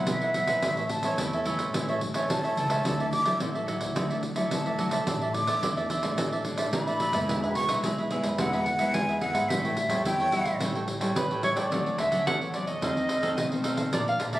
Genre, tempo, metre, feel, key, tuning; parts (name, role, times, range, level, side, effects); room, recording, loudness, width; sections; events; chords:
samba and choro; 108 BPM; 4/4; straight; D major; A4 = 438 Hz
cavaquinho; accompaniment; 0.0-14.4 s; D4 to A5; -32 LUFS; right 2 dB
nylon-string guitar; accompaniment; 0.0-14.4 s; F2 to E4; -33 LUFS; left 2 dB
breathy jazz flute; second line; 0.1-10.6 s; E5 to D6; -28 LUFS; equal
upright bass; bass; 0.1-14.4 s; E1 to F2; -35 LUFS; equal
pandeiro; percussion; 0.1-14.4 s; -31 LUFS; right 1 dB
breathy soprano saxophone; melody; 11.2-14.4 s; B4 to F#5; -28 LUFS; right 1 dB
moderate large studio reverb, RT60 1.2 s; recorded on a phone in the room, club reverb, compression; -25 LUFS; side -15 dB against mid
0.0-11.7 A section; 11.7-14.4 B section
flute solo 0.0-11.7
0.0 Esus2/B; 0.6 A; 2.9 Dadd9; 5.1 Asus4; 7.3 E; 9.5 A7; 11.7 Dmaj7; 12.8 F7